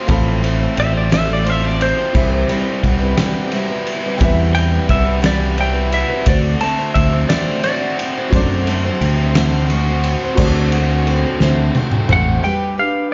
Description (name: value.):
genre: folk rock and heartland rock.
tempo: 58 BPM (dotted quarters).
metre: 6/8.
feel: straight.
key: unclear.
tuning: A4 = 440 Hz.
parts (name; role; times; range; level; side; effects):
semi-hollow electric guitar; melody; 0.0-8.0, 12.1-13.1 s; C5 to A5; -23 LUFS; equal; slapback echo.
dark baby grand piano; accompaniment; 0.0-12.4 s; E4 to B5; -30 LUFS; equal; slapback echo.
picked twelve-string acoustic guitar; accompaniment; 0.0-13.1 s; A2 to C5; -25 LUFS; equal; none.
overdriven electric guitar; riff; 0.0-12.4 s; A2 to F#4; -26 LUFS; equal; none.
fingered electric bass; bass; 0.1-12.4 s; A1 to F#2; -19 LUFS; equal; none.
loose indie drum kit; drums; 0.1-12.3 s; crash cymbal, kick drum, ride cymbal, snare drum, toms; -22 LUFS; equal; none.
room: light reverb, studio ambience.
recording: live gig heard through the venue's PA, club reverb, nothing above 7.5 kHz.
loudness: -16 LUFS.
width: mono.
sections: 0.0-10.4 A section; 10.4-12.4 B section.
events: clean electric guitar solo 0.0-10.4; drum fill 11.4-12.4.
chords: 0.0 F/A; 2.1 Cmaj7; 6.3 D7; 12.4 G.